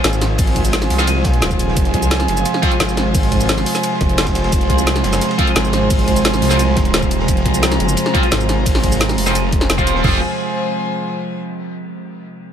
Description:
dark technical drum and bass; 174 BPM; 4/4; straight; F minor; A4 = 444 Hz
metallic inharmonic drone; sustained chords; 0.0-10.2 s; C3 to F4; -22 LUFS; right 3 dB; chorus, built-in reverb, sidechain pumping
snarling distorted saw bass; bass; 0.0-10.2 s; Eb1 to C2; -19 LUFS; equal; distortion
crunchy breakbeat drum kit; drums; 0.0-10.0 s; hi-hat, ride cymbal, snare drum; -31 LUFS; equal
drum and bass drum kit; drums; 0.0-9.9 s; hi-hat, shaker, snare drum; -20 LUFS; equal; overdrive
dark studio string section; texture; 0.0-11.4 s; F4 to Bb5; -22 LUFS; left 1 dB; sidechain pumping
drum and bass drum kit; drums; 0.4-10.1 s; crash cymbal, kick drum, toms; -18 LUFS; equal; overdrive
tight distorted guitar; stabs; 1.0-2.7, 5.4-10.2 s; F3 to F4; -22 LUFS; equal; distortion, low-pass filter, ping-pong delay
light reverb, small room reverb; -14 LUFS; side -8 dB against mid
0.0-10.0 A section; 10.0-11.4 B section
filter sweep on synth drone 0.0-10.0
0.0 Fm
0.04 | 0.39 0.73 1.08 1.42 | 1.77 2.11 2.46 2.80 | 3.15 3.49 3.84 4.18 | 4.53 4.87 5.21 5.56 | 5.91 6.25 6.59 6.94 | 7.28 7.63 7.97 8.32 | 8.66 9.01 9.35 9.70 | 10.04 10.39 10.73 11.08

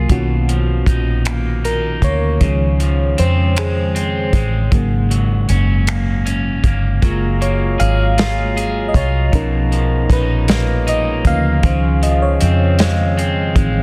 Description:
slow six-eight R&B; 52 BPM (dotted quarters); 6/8; straight; Db major; A4 = 440 Hz
electric guitar at the edge of break-up; second line; 0.0-13.8 s; Ab2 to Ab4; -25 LUFS; equal; digital delay
FM electric piano with tremolo; accompaniment; 0.0-13.8 s; Db3 to F5; -23 LUFS; equal
vintage muted fingered electric bass; bass; 0.0-13.8 s; Gb1 to F2; -19 LUFS; equal
warm soul drum kit; drums; 0.1-13.7 s; finger snaps, hi-hat, kick drum, snare drum; -19 LUFS; equal
tonewheel organ; sustained chords; 7.0-13.8 s; Gb3 to Bb5; -28 LUFS; equal; stopped rotary speaker
light reverb, studio reverb; dense, heavily limited modern master; -16 LUFS; mono
0.0-13.8 A section
FM electric piano solo 0.0-13.8
0.1 Cbmaj9#11; 2.4 Dbmaj7; 4.7 Ab9sus4; 7.0 Gbmaj9; 9.3 Cbmaj9#11; 11.6 Dbmaj7
| 0.10 1.25 | 2.41 3.56 | 4.72 5.87 | 7.02 8.18 | 9.33 10.48 | 11.64 12.79

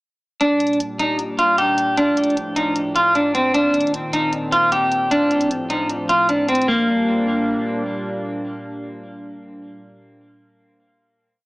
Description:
hip hop, trap; 153 BPM; 4/4; half-time; G minor; A4 = 435 Hz
clean electric guitar; melody; 0.4-7.8 s; Bb3 to G4; -17 LUFS; equal; tape echo
warm analog pad; sustained chords; 0.4-9.8 s; A2 to D4; -27 LUFS; equal; chorus
electronic hi-hat; drums; 0.4-6.7 s; -32 LUFS; equal
moderate echo chamber reverb, RT60 1.4 s; echo-heavy mix, small speaker sound; -16 LUFS; side -22 dB against mid
0.4-6.7 breakdown; 6.7-9.8 final chord
0.4 Gm; 2.0 Dm; 3.5 Cm7; 5.1 F; 6.7 Gm
| 0.41 0.80 1.19 1.58 | 1.98 2.37 2.76 3.15 | 3.54 3.94 4.33 4.72 | 5.11 5.50 5.90 6.29 | 6.68 7.07 7.46 7.86 | 8.25 8.64 9.03 9.43

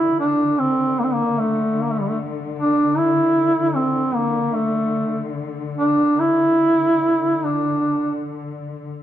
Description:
caucasian folk, Caucasian lament; 60-77 BPM; 4/4; rubato; A4 = 441 Hz
mellow duduk; melody; 0.0-8.3 s; G3 to E4; -17 LUFS; right 1 dB
muted studio string section; drone; 0.0-9.0 s; D3; -28 LUFS; left 5 dB
moderate recital hall reverb, RT60 1.6 s; dark, warm production; -17 LUFS; side -11 dB against mid
0.0-9.0 A section
0.18 0.98 1.78 | 2.58 3.36 4.14 4.94 | 5.76 6.59 7.43 8.31

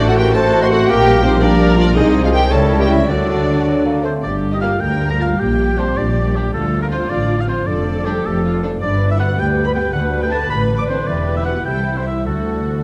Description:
classical, dramatic, fast romantic movement for symphony orchestra; 98-113 BPM (dotted quarters); 6/8; straight; G minor, G major from 8.8 s; A4 = 441 Hz
warm symphonic violin section; melody; 0.0-12.8 s; Bb3 to C6; -26 LUFS; equal
clear oboe; second line; 0.0-12.8 s; G4 to D6; -26 LUFS; equal
mellow hollow concert flute; second line; 0.0-4.0 s; Eb4 to Eb5; -23 LUFS; equal
warm clarinet; second line; 0.0-4.0 s; F#4 to A#4; -27 LUFS; equal
warm symphonic violin section; second line; 0.0-12.8 s; C4 to D6; -30 LUFS; equal
clear symphonic viola section; accompaniment; 0.0-12.8 s; E4 to B4; -27 LUFS; equal
mellow bassoon; accompaniment; 0.0-4.2 s; F#3 to Bb3; -26 LUFS; equal
mellow French horn section; sustained chords; 0.0-12.8 s; G3 to D5; -25 LUFS; equal
concert harp; arpeggios; 0.0-12.8 s; F2 to D6; -27 LUFS; equal
rich symphonic cello section; bass; 0.0-12.8 s; C2 to D3; -25 LUFS; equal
rich symphonic double bass section; bass; 0.0-12.8 s; E1 to D2; -22 LUFS; equal
moderate scoring stage reverb, RT60 2.1 s; dark, warm production; -16 LUFS; mono
0.0-4.2 A section; 4.2-12.8 B section
0.0 D7/A; 0.9 Gm/Bb; 2.0 Ab/C; 2.5 C#dim7; 3.1 D; 4.2 Gm; 5.4 Gm/Bb; 6.5 Dm; 7.7 Dm/F; 8.8 G; 9.9 D5; 11.1 Em; 11.7 Am7/C; 12.3 D
0.35 | 0.89 1.43 | 1.97 2.52 | 3.09 3.66 | 4.23 4.81 | 5.39 5.96 | 6.54 7.11 | 7.69 8.26 | 8.82 9.38 | 9.95 10.51 | 11.08 11.66 | 12.26

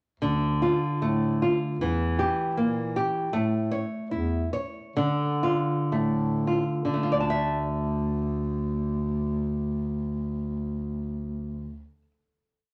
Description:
fado-style ballad; 47-80 BPM; 2/4; rubato; D harmonic minor; A4 = 440 Hz
nylon-string guitar; accompaniment; 0.2-12.1 s; D3 to A5; -28 LUFS; equal
mellow bass clarinet; bass; 0.2-11.9 s; D2 to D3; -32 LUFS; equal
wet large studio reverb, RT60 0.9 s; -27 LUFS; mono
0.2-7.1 A section; 7.1-11.9 final chord
slowing down 3.3-7.1
0.2 Dm; 1.8 Edim; 3.3 A; 5.0 Dm; 7.1 Dsus2
| 0.20 1.02 | 1.80 2.57 | 3.32 4.11 | 4.96 5.92 | 7.07 8.33 | 9.54 10.73

